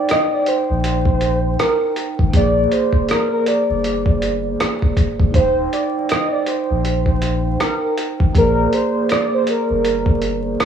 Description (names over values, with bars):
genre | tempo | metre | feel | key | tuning
lo-fi hip hop | 80 BPM | 4/4 | swing 59% on 16ths | Eb major | A4 = 436 Hz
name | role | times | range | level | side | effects
warm velvety synth lead | melody | 0.0-10.6 s | Bb4 to Eb5 | -20 LUFS | equal | chorus, low-pass filter, cassette tape, tape echo
vibraphone with soft mallets | accompaniment | 0.0-10.7 s | Bb3 to G5 | -21 LUFS | right 2 dB | cassette tape, low-pass filter
dusty soul sampler-style drum kit | drums | 0.1-10.7 s | hi-hat, kick drum, rim click | -19 LUFS | equal | cassette tape
sub bass with octave | bass | 0.7-10.6 s | Eb1 to Bb1 | -21 LUFS | left 1 dB | none
room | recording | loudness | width
light reverb | home recording on cassette, vinyl crackle, small room ambience | -15 LUFS | side -8 dB against mid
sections
0.0-10.7 A section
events
none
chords
0.0 Eb69; 2.3 Bb9; 5.3 Eb69; 8.3 Bb9